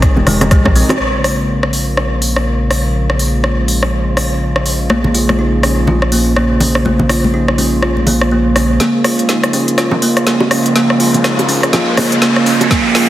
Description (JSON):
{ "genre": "afro house", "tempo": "123 BPM", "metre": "4/4", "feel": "swing 60% on 16ths", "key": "Bb dorian", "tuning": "A4 = 440 Hz", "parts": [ { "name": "warm analog pad", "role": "sustained chords", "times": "0.0-13.1 s", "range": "C3 to C5", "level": "-19 LUFS", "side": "equal", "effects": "chorus, sidechain pumping" }, { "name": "kalimba", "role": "arpeggios", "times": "0.0-0.9, 4.9-13.1 s", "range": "Ab3 to F4", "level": "-16 LUFS", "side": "right 2 dB", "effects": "sidechain pumping, digital delay" }, { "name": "round analog bass", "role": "bass", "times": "0.0-12.8 s", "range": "F1 to Bb1", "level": "-17 LUFS", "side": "equal", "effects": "sidechain pumping, high-pass filter" }, { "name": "deep house drum kit", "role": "drums", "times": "0.0-13.1 s", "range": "hi-hat, rim click, snare drum", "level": "-16 LUFS", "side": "equal", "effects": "high-pass filter on hats, studio reverb, high-pass filter on snare" }, { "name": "electronic kick drum", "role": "drums", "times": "0.0-0.7, 12.7-12.8 s", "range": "none", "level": "-12 LUFS", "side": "equal", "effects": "studio reverb" }, { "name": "bongos", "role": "percussion", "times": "0.2-1.0, 8.8-12.8 s", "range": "none", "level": "-19 LUFS", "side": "right 2 dB", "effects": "none" }, { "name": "congas", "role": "percussion", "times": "0.2-0.7, 4.9-8.2 s", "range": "none", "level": "-19 LUFS", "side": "left 1 dB", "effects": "none" }, { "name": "riser", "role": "sound effects", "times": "9.7-13.1 s", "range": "none", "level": "-20 LUFS", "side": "right 1 dB", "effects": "none" } ], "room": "moderate lush hall reverb, RT60 1.8 s", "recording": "heavily compressed radio sound, high-pass filter", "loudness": "-11 LUFS", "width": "side -13 dB against mid", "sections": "1.0-8.8 A section; 8.8-13.1 B section", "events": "drum fill 0.3-1.0, 8.8-13.1; band accent 0.9; filter sweep on analog synth pad 1.0-8.8; build-up 8.8-13.1; riser 9.7-13.1", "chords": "0.0 Abmaj7; 1.0 Bbm7" }